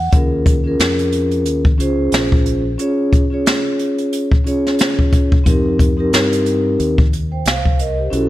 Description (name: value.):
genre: hip hop, jazz-hop.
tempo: 90 BPM.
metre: 4/4.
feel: swing 58% on 16ths.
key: unclear.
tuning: A4 = 440 Hz.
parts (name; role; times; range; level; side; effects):
vibraphone with soft mallets; accompaniment; 0.0-8.3 s; C4 to G5; -17 LUFS; equal; none.
deep dub fingered electric bass; bass; 0.0-8.3 s; Bb1 to G2; -21 LUFS; equal; none.
jazz brush drum kit; drums; 0.1-8.3 s; hi-hat, kick drum, snare drum; -15 LUFS; equal; none.
room: studio reverb.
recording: none.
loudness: -13 LUFS.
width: side -15 dB against mid.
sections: 0.1-8.3 A section.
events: none.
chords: 0.1 Eb9sus4; 5.5 F9sus4.